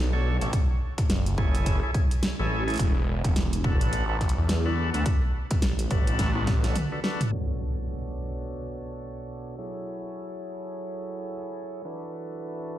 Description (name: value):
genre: glitch hop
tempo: 106 BPM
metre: 4/4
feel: swing 59% on 16ths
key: B dorian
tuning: A4 = 440 Hz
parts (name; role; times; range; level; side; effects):
- phased detuned saw bass; bass; 0.0-6.7 s; E1 to E2; -26 LUFS; equal; phaser
- overdriven tonewheel organ; stabs; 0.1-12.8 s; B2 to C#5; -33 LUFS; right 1 dB; slow rotary speaker, vintage 12-bit sampler grit, sidechain pumping, tape echo
- dubstep drum kit; drums; 0.4-12.7 s; hi-hat, snare drum, toms; -32 LUFS; equal; low-pass filter on hats, studio reverb, low-pass filter on snare, low-pass filter on toms
- electronic kick drum; drums; 0.5-6.6 s; none; -25 LUFS; equal; studio reverb
- impact; sound effects; 7.3-9.6 s; none; -33 LUFS; equal; none
room: light reverb, digital ambience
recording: played on a big sound system in a bare room, large studio reverb, low-pass filter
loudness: -24 LUFS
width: side -13 dB against mid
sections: 0.0-7.3 A section; 7.3-12.8 B section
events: drum fill 6.2-7.3; impact 7.3-9.6; filter sweep 7.3-12.8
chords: 0.0 Bm7; 0.5 F#m7; 2.8 E7sus4; 5.1 Bm7/A; 7.3 Bm7; 9.6 F#m7; 11.9 E7sus4